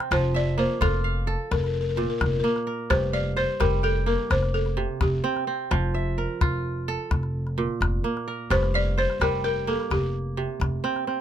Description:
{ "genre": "west african traditional, West African string and xylophone music", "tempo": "86 BPM (dotted quarters)", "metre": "12/8", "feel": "straight", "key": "F major", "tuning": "A4 = 440 Hz", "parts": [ { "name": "kora", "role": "arpeggios", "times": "0.0-11.2 s", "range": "G2 to G5", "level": "-28 LUFS", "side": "right 4 dB", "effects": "none" }, { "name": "calabash", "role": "percussion", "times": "0.0-11.1 s", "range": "none", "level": "-26 LUFS", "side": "left 2 dB", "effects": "none" }, { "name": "balafon", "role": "melody", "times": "0.1-11.0 s", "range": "G4 to D5", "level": "-27 LUFS", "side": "left 3 dB", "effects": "none" }, { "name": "upright bass", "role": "bass", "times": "0.1-10.8 s", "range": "F1", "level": "-27 LUFS", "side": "equal", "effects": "none" } ], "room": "little or no reverb", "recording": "close, detailed microphones", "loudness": "-23 LUFS", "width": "side -10 dB against mid", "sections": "0.0-11.2 A section", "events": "none", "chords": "0.1 F; 1.5 Bb5/F; 2.9 Gm/F; 5.7 F; 7.1 Bb5/F; 8.5 Gm/F", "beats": "| 0.11 0.81 1.51 2.21 | 2.91 3.61 4.31 5.01 | 5.71 6.41 7.11 7.81 | 8.51 9.21 9.91 10.61" }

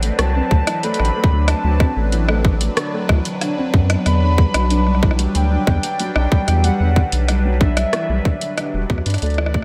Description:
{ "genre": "IDM", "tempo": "93 BPM", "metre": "4/4", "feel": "straight", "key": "E minor", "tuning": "A4 = 441 Hz", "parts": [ { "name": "phased analog pad", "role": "sustained chords", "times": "0.0-9.6 s", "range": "F#3 to B4", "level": "-27 LUFS", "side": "equal", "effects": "phaser, chorus" }, { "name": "felt-muted upright piano", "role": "arpeggios", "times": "0.0-9.6 s", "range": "D3 to D4", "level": "-28 LUFS", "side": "equal", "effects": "subtle chorus, tape echo" }, { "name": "round analog bass", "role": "bass", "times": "0.0-9.6 s", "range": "E1 to G2", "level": "-20 LUFS", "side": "equal", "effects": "none" }, { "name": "booming analog drum machine", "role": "drums", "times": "0.0-9.6 s", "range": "hi-hat, rim click", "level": "-26 LUFS", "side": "equal", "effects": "studio reverb" }, { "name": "warbly nostalgic lead", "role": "melody", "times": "0.2-9.6 s", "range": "D5 to B5", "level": "-28 LUFS", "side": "equal", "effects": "chorus, diffuse ambient delay" }, { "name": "electronic kick drum", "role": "drums", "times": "0.5-9.6 s", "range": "none", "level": "-18 LUFS", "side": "equal", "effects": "studio reverb" } ], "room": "light reverb", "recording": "none", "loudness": "-17 LUFS", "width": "mono", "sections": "0.0-9.6 A section", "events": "fade-out 7.5-9.6", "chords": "0.0 D13; 4.1 Em9", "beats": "0.19 0.83 | 1.48 2.12 2.77 3.41 | 4.06 4.70 5.35 5.99 | 6.64 7.28 7.93 8.57 | 9.22" }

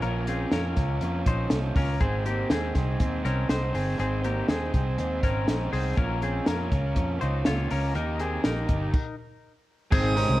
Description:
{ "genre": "jangly indie pop", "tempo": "121 BPM", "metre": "4/4", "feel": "straight", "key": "Ab major", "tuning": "A4 = 439 Hz", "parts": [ { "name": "crunchy overdriven guitar", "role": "accompaniment", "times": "0.0-10.4 s", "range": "Bb2 to Db5", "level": "-31 LUFS", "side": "right 4 dB", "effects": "none" }, { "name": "twelve-string electric guitar", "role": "arpeggios", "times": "0.0-10.4 s", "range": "Bb3 to Db5", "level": "-32 LUFS", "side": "left 4 dB", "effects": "digital delay" }, { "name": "vintage muted fingered electric bass", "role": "bass", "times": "0.0-10.4 s", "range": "G1 to F2", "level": "-28 LUFS", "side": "equal", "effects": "none" }, { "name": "compact cocktail drum kit", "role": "drums", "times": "0.0-10.3 s", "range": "crash cymbal, hi-hat, kick drum, snare drum", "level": "-27 LUFS", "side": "equal", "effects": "none" }, { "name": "warm violin", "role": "melody", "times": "9.9-10.4 s", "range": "Eb6", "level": "-28 LUFS", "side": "right 5 dB", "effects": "none" }, { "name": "phased analog pad", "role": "sustained chords", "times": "9.9-10.4 s", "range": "C3 to Eb4", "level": "-29 LUFS", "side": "equal", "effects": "phaser, chorus" }, { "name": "tambourine", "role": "percussion", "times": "9.9-10.3 s", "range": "none", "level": "-46 LUFS", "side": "right 5 dB", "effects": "none" } ], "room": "moderate club reverb, RT60 0.9 s", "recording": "worn, warbling old tape, cassette tape, warbly pitch drift", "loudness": "-24 LUFS", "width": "side -16 dB against mid", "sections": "0.0-9.9 A section", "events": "stop 8.9-9.9", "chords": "0.0 Bbm; 2.0 Ab; 6.0 Bbm; 8.0 Eb", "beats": "| 0.03 0.52 1.02 1.52 | 2.01 2.51 3.00 3.50 | 4.00 4.49 4.99 5.48 | 5.97 6.47 6.96 7.46 | 7.95 8.44 8.94 9.43 | 9.92" }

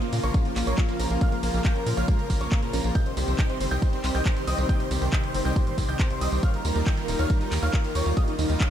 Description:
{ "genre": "uplifting trance", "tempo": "138 BPM", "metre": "4/4", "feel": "straight", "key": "unclear", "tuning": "A4 = 440 Hz", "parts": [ { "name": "big supersaw lead", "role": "melody", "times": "0.0-8.7 s", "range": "Db4 to G5", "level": "-32 LUFS", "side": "equal", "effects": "wide subtle chorus, sidechain pumping, ping-pong delay" }, { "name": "dark baby grand piano", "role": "second line", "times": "0.0-8.7 s", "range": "Eb5 to G6", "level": "-36 LUFS", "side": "equal", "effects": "sidechain pumping, ping-pong delay" }, { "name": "supersaw pad", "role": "sustained chords", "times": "0.0-8.7 s", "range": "Db3 to G4", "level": "-31 LUFS", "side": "equal", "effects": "sidechain pumping" }, { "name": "wide unison pluck", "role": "arpeggios", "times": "0.0-8.7 s", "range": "C2 to Bb4", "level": "-34 LUFS", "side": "right 1 dB", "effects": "phaser, sidechain pumping, ping-pong delay" }, { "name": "punchy analog drum machine", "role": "drums", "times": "0.0-8.7 s", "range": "handclaps, hi-hat, tambourine", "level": "-35 LUFS", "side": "right 1 dB", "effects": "none" }, { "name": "tight sequencer bass", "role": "bass", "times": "0.1-8.6 s", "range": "Eb1 to Bb2", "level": "-26 LUFS", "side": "equal", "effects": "sidechain pumping" }, { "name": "electronic kick drum", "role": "drums", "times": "0.3-8.7 s", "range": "none", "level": "-23 LUFS", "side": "equal", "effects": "none" } ], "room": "light reverb, digital ambience", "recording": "none", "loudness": "-22 LUFS", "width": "side -10 dB against mid", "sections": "0.0-8.7 A section", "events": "none", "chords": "0.0 Bbm; 3.0 Cm; 6.4 Ebadd9", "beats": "0.34 0.78 | 1.21 1.65 2.08 2.52 | 2.95 3.39 3.82 4.26 | 4.69 5.13 5.56 6.00 | 6.43 6.87 7.30 7.73 | 8.17 8.60" }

